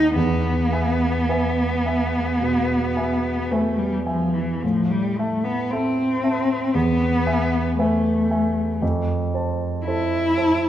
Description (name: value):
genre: classical, romantic duo for cello and grand piano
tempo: 53-59 BPM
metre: 4/4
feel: rubato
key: unclear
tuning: A4 = 442 Hz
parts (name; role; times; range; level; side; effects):
- warm cello; melody; 0.0-10.7 s; E3 to E4; -21 LUFS; left 1 dB; none
- warm concert grand piano; accompaniment; 0.0-10.7 s; D#2 to A5; -23 LUFS; right 1 dB; none
room: moderate scoring stage reverb, RT60 2.0 s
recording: none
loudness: -19 LUFS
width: side -11 dB against mid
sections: 0.0-10.7 A section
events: none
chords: 0.2 E; 4.6 Am; 6.7 E; 8.8 Fmaj7